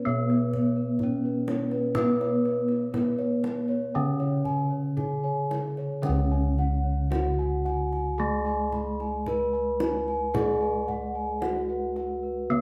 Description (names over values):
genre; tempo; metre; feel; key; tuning
Javanese gamelan; 56-65 BPM; 4/4; straight; unclear; A4 = 442 Hz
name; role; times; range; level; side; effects
gamelan-type bronze metallophone; melody; 0.0-12.6 s; B3-40c to B4-40c; -32 LUFS; equal; none
gamelan-type bronze metallophone; accompaniment; 0.0-12.6 s; C#3 to B3-40c; -33 LUFS; equal; none
gamelan-type bossed gongs; arpeggios; 0.0-12.6 s; B4-40c to B5-40c; -38 LUFS; equal; none
gamelan-type bronze metallophone; arpeggios; 0.0-12.6 s; B4-40c to B5-40c; -36 LUFS; equal; none
gamelan-type bossed gongs; bass; 0.0-12.6 s; C#2 to B4-40c; -33 LUFS; equal; none
kendang; percussion; 0.3-12.1 s; none; -39 LUFS; equal; none
room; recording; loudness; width
wet large studio reverb, RT60 1.3 s; band playing live in one room; -27 LUFS; mono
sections
0.0-6.0 A section; 6.0-12.6 B section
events
none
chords
none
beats
0.06 1.00 | 1.96 2.94 3.94 4.98 | 6.04 7.12 8.19 9.27 | 10.34 11.42 12.49